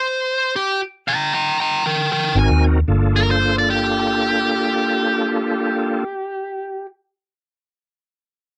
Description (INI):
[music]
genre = straight-eighth soul blues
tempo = 115 BPM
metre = 4/4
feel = swing 55% on 16ths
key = G minor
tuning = A4 = 436 Hz
[part]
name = smooth overdriven lead guitar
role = melody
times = 0.0-6.9 s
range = G4 to Bb5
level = -22 LUFS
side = equal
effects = none
[part]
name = bright tonewheel organ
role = accompaniment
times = 2.4-6.0 s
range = Bb3 to Bb4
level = -23 LUFS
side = equal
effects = slow rotary speaker, overdrive, chorus vibrato
[part]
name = vintage muted fingered electric bass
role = bass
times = 2.4-6.0 s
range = G1 to Eb2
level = -20 LUFS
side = equal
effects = none
[sound]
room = little or no reverb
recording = dry, close 1970s-style studio recording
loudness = -19 LUFS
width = mono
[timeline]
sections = 0.0-2.9 A section; 2.9-7.0 B section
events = stop 0.0-2.4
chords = 0.0 Gm; 2.4 Ab7; 2.9 Gm7